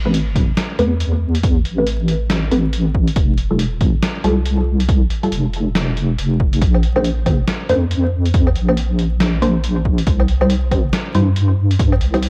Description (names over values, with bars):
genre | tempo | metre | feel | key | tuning
deep dubstep | 139 BPM | 4/4 | swing 60% on 16ths, half-time | A minor | A4 = 437 Hz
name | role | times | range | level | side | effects
deep soft wobble bass | bass | 0.0-12.3 s | F1 to G2 | -19 LUFS | equal | chorus
filtered dub chord stab | stabs | 0.1-12.2 s | G3 to C5 | -24 LUFS | equal | phaser, dub echo
trip hop sampler-style drum kit | drums | 0.1-12.3 s | hi-hat, snare drum, woodblock | -26 LUFS | equal | none
electronic kick drum | drums | 0.4-11.9 s | none | -20 LUFS | equal | overdrive
room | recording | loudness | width
light reverb, digital ambience | home recording on cassette, vinyl crackle | -17 LUFS | mono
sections
0.0-12.3 A section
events
none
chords
0.0 Amadd9; 3.2 F5; 6.6 Bbadd9; 10.1 C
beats
0.14 0.57 1.00 | 1.44 1.87 2.30 2.73 | 3.16 3.59 4.03 4.46 | 4.89 5.32 5.75 6.18 | 6.62 7.05 7.48 7.91 | 8.34 8.77 9.21 9.64 | 10.07 10.50 10.93 11.36 | 11.79 12.23